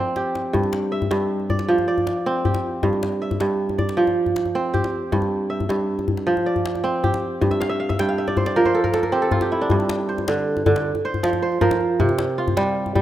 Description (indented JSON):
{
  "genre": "west african traditional, West African string and xylophone music",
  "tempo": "105 BPM (dotted quarters)",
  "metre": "12/8",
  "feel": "straight",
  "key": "unclear",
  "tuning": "A4 = 440 Hz",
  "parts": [
    { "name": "kora", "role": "arpeggios", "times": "0.0-13.0 s", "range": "G2 to G5", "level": "-20 LUFS", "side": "right 2 dB", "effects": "none" },
    { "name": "djembe", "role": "percussion", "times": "0.2-13.0 s", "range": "none", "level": "-25 LUFS", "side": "left 3 dB", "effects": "none" }
  ],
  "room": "moderate lush hall reverb, RT60 2.8 s",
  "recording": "rough home demo mix",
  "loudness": "-19 LUFS",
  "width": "side -12 dB against mid",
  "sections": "0.0-9.7 A section; 9.7-13.0 B section",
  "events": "drum fill 0.0-0.5; kora fill 7.5-9.7",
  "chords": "0.0 F5; 0.5 G5; 1.7 F5; 2.8 G5; 4.0 F5; 5.1 Em/G; 6.3 F5; 7.4 N.C.; 8.6 F5; 9.7 G5; 10.8 F5; 12.0 C5"
}